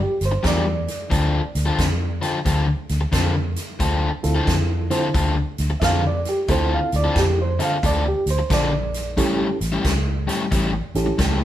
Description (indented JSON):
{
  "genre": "electric blues shuffle",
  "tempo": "89 BPM",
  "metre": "4/4",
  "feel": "swing 65% on 8ths",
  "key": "D minor",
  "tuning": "A4 = 440 Hz",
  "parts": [
    { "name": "reed electric piano", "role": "accompaniment", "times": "0.0-11.2 s", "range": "C4 to F5", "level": "-24 LUFS", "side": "right 2 dB", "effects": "fast tremolo" },
    { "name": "vintage muted fingered electric bass", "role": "bass", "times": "0.0-11.4 s", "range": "G1 to F2", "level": "-22 LUFS", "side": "equal", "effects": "none" },
    { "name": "swinging big-band drum kit", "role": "drums", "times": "0.2-11.4 s", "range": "hi-hat, kick drum, snare drum", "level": "-26 LUFS", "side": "equal", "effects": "none" },
    { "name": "overdriven semi-hollow guitar", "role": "riff", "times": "0.3-11.4 s", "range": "A2 to Bb4", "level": "-23 LUFS", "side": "left 3 dB", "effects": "none" }
  ],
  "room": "moderate studio reverb, RT60 0.7 s",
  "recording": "band playing live in one room",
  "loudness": "-18 LUFS",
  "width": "side -12 dB against mid",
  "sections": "0.0-11.4 A section",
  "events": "none",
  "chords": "0.0 Gm7; 1.1 Dm7; 9.2 A7"
}